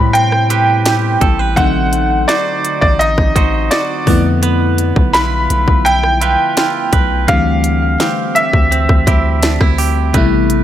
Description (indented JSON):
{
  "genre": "contemporary R&B",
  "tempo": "84 BPM",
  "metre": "4/4",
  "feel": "straight",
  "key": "unclear",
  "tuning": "A4 = 440 Hz",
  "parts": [
    { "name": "clear grand piano", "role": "melody", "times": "0.0-9.7 s", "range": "D5 to B5", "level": "-16 LUFS", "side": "equal", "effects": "tape echo" },
    { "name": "FM electric piano with soft pad layer", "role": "accompaniment", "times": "0.0-10.6 s", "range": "B2 to E4", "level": "-19 LUFS", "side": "left 4 dB", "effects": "chorus" },
    { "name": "direct-recorded clean electric guitar", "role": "arpeggios", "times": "0.0-10.6 s", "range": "D3 to C5", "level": "-20 LUFS", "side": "right 8 dB", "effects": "tape echo" },
    { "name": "long sustained 808-style bass", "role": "bass", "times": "0.0-10.6 s", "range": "A1 to A2", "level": "-16 LUFS", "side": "equal", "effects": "none" },
    { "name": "trap drum kit", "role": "drums", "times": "0.1-10.6 s", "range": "hi-hat, kick drum, rim click, snare drum", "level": "-16 LUFS", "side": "equal", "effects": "none" }
  ],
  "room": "little or no reverb",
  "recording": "none",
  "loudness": "-11 LUFS",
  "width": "side -11 dB against mid",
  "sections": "0.0-10.6 A section",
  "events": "none",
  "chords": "0.0 Am9; 1.6 D7b9/A; 4.1 G13/B; 7.3 D9sus4"
}